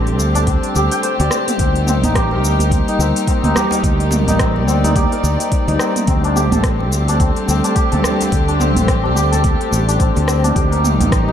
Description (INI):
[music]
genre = organic downtempo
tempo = 107 BPM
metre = 4/4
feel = swing 59% on 16ths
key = unclear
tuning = A4 = 439 Hz
[part]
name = dark chamber string section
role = sustained chords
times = 0.0-11.3 s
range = D3 to D5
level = -20 LUFS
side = left 1 dB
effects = sidechain pumping
[part]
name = santur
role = arpeggios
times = 0.0-11.3 s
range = C4 to G5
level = -20 LUFS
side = left 1 dB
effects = tape echo
[part]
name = fretless electric bass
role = bass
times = 0.0-11.3 s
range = A1 to D2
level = -17 LUFS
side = equal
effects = none
[part]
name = organic electronic drum kit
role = drums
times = 0.1-11.3 s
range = hi-hat, rim click, shaker, toms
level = -22 LUFS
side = right 1 dB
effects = none
[part]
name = djembe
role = percussion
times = 0.1-11.3 s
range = none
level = -26 LUFS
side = right 2 dB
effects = none
[part]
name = electronic kick drum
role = drums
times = 0.5-11.3 s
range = none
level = -18 LUFS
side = equal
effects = none
[sound]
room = moderate lush hall reverb, RT60 1.8 s, digital ambience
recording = dark, warm production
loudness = -13 LUFS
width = side -9 dB against mid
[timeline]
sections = 0.0-11.3 A section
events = kick drops out 1.0-1.6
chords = 0.0 D7sus4; 1.6 Cm7